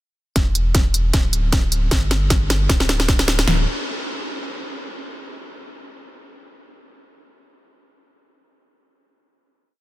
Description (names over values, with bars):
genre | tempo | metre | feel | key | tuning
future bass | 154 BPM | 4/4 | swing 55% on 16ths, half-time | unclear | A4 = 439 Hz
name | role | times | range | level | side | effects
saturated sub bass | bass | 0.4-3.7 s | D1 to G1 | -20 LUFS | equal | sidechain pumping
pop drum kit | drums | 0.4-3.6 s | kick drum, snare drum | -19 LUFS | equal | none
trap drum kit | drums | 0.4-3.5 s | hi-hat, snare drum | -22 LUFS | equal | none
room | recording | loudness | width
light reverb, digital ambience | dense, heavily limited modern master | -17 LUFS | side -16 dB against mid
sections
0.4-3.5 build; 3.5-5.0 final note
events
build-up 0.4-3.5; drum fill 0.4-3.5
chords
none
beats
| 0.36 0.75 1.14 1.53 | 1.92 2.31 2.69 3.08 | 3.47